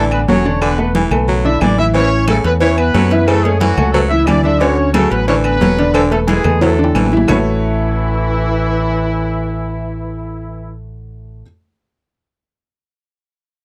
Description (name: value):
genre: latin, salsa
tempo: 180 BPM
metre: 4/4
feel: straight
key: A major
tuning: A4 = 439 Hz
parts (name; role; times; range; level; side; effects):
- mellow horn section; melody; 0.0-10.7 s; E3 to E5; -21 LUFS; equal; none
- growling baritone saxophone; second line; 0.0-7.4 s; A2 to F#3; -23 LUFS; equal; slapback echo
- bright baby grand piano; accompaniment; 0.0-11.4 s; D3 to E5; -20 LUFS; equal; none
- fingered electric bass; bass; 0.0-11.4 s; E1 to F#2; -20 LUFS; equal; none
- agogo bells and timbales; percussion; 0.1-7.4 s; none; -24 LUFS; equal; none
- claves; percussion; 0.1-7.4 s; none; -31 LUFS; equal; none
- congas; percussion; 0.1-7.4 s; none; -23 LUFS; equal; none
- cowbell and bongos; percussion; 1.9-7.4 s; none; -24 LUFS; equal; none
room: little or no reverb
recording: dry, close 1970s-style studio recording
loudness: -14 LUFS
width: mono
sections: 0.0-7.3 A section; 7.3-10.0 B section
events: drum fill 6.6-7.3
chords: 0.0 Dmaj7; 0.6 E7sus4; 1.9 A69; 3.3 F#m7; 4.6 Dmaj7; 5.9 E7sus4; 7.3 A69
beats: 0.28 | 0.61 0.94 1.28 1.61 | 1.94 2.28 2.61 2.94 | 3.28 3.61 3.94 4.28 | 4.61 4.95 5.28 5.61 | 5.95 6.28 6.62 6.95 | 7.28 7.62 7.95 8.29 | 8.62 8.96 9.29 9.62